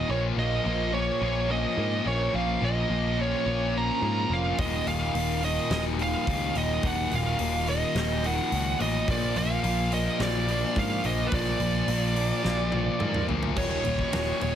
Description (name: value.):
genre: quiet-loud alternative rock.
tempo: 107 BPM.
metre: 4/4.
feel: straight.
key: Eb minor.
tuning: A4 = 440 Hz.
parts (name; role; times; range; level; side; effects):
high-gain lead guitar; melody; 0.0-14.6 s; Cb5 to Bb5; -29 LUFS; right 4 dB; distortion, slapback echo.
twelve-string electric guitar; arpeggios; 0.0-14.6 s; Eb2 to F4; -36 LUFS; right 3 dB; lush chorus.
thick fuzz guitar; riff; 0.0-14.6 s; Eb2 to Bb3; -29 LUFS; left 6 dB; distortion.
picked electric bass; bass; 0.0-14.6 s; Eb1 to Ab2; -30 LUFS; equal; none.
huge arena drum kit; drums; 4.6-14.5 s; crash cymbal, hi-hat, kick drum, ride cymbal, snare drum, toms; -33 LUFS; equal; none.
room: studio ambience.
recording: heavily compressed radio sound, multiband compression.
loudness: -24 LUFS.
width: side -10 dB against mid.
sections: 0.0-13.6 A section.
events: half time 0.0-13.6; drum fill 12.4-13.6.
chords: 0.1 Bbm; 4.6 Ebm; 9.1 Bb; 13.6 Ebm.